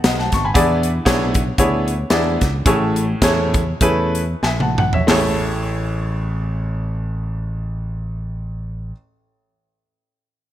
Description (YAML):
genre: uptempo gospel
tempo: 88-118 BPM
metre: 4/4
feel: swing 55% on 8ths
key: A major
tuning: A4 = 439 Hz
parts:
  - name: clear baby grand piano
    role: accompaniment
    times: 0.0-8.9 s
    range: A1 to C#6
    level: -19 LUFS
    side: equal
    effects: none
  - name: fingered electric bass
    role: bass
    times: 0.0-8.9 s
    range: G#1 to E2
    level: -22 LUFS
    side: equal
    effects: none
  - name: modern studio drum kit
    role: drums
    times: 0.0-5.3 s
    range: hi-hat, kick drum, snare drum, toms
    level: -19 LUFS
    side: equal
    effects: gated reverb
room: light reverb, small room ambience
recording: bright 1980s-style digital production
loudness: -16 LUFS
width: side -12 dB against mid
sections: 0.0-5.1 A section; 5.1-10.5 B section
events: slowing down 0.5-5.1; drum fill 4.4-5.1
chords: 0.0 B7; 0.5 E7; 2.7 Amaj7